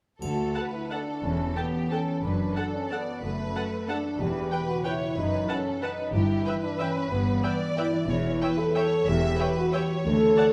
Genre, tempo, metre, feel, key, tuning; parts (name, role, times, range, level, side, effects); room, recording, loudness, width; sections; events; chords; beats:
classical, orchestral ballroom waltz; 183 BPM; 3/4; uneven beats, rubato; D major; A4 = 439 Hz
warm symphonic violin section; second line; 0.2-10.5 s; G4 to E5; -36 LUFS; equal
warm French horn section; sustained chords; 0.2-10.5 s; A3 to A4; -30 LUFS; equal
concert harp; arpeggios; 0.2-10.5 s; E2 to C#5; -36 LUFS; equal
rich symphonic double bass section; bass; 0.2-10.3 s; E1 to D2; -35 LUFS; equal
warm symphonic cello section; bass; 0.2-10.3 s; D2 to G2; -34 LUFS; equal
triangle; percussion; 0.2-0.9 s; -52 LUFS; equal
warm studio violin section; melody; 0.6-10.5 s; G5 to A5; -42 LUFS; equal
warm symphonic viola section; accompaniment; 0.6-10.5 s; A4 to G5; -38 LUFS; equal
moderate scoring stage reverb, RT60 1.9 s; -27 LUFS; mono
0.2-10.5 A section
0.2 D; 1.2 A7/E; 2.2 D/F#; 4.2 Em; 5.2 B7/F#; 6.1 Em/G; 8.1 C#dim/E
| 0.22 0.56 0.91 | 1.24 1.57 1.91 | 2.23 2.56 2.91 | 3.23 3.56 3.89 | 4.20 4.52 4.86 | 5.17 5.49 5.83 | 6.14 6.46 6.80 | 7.11 7.44 7.77 | 8.09 8.41 8.75 | 9.07 9.39 9.73 | 10.05 10.38